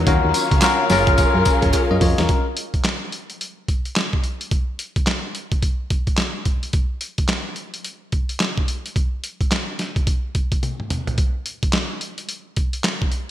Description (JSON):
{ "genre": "R&B, new jack swing", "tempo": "108 BPM", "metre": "4/4", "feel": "swing 62% on 16ths", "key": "unclear", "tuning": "A4 = 440 Hz", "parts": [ { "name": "bell-like tine electric piano", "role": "accompaniment", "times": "0.0-2.5 s", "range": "Db4 to Eb5", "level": "-19 LUFS", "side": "left 4 dB", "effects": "phaser" }, { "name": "warm studio string section", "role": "sustained chords", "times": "0.0-2.3 s", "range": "Eb3 to F5", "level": "-25 LUFS", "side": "equal", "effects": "none" }, { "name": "solid FM bass", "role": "bass", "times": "0.0-2.3 s", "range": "Gb1 to Gb2", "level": "-20 LUFS", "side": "equal", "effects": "none" }, { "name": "boom bap sampler-style drum kit", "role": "drums", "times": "0.1-13.3 s", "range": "handclaps, hi-hat, kick drum, snare drum, tambourine, toms", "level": "-20 LUFS", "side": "equal", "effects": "gated reverb" }, { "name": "group handclap", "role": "percussion", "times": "0.6-1.9 s", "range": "none", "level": "-36 LUFS", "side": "right 4 dB", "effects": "none" } ], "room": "moderate lush hall reverb, RT60 1.7 s", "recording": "bright 1980s-style digital production", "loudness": "-18 LUFS", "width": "side -12 dB against mid", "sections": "0.0-2.3 A section; 2.3-13.3 B section", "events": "drum fill 1.7-2.3, 10.6-11.2", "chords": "0.1 Ebm9; 0.9 Gbmaj9; 2.3 N.C." }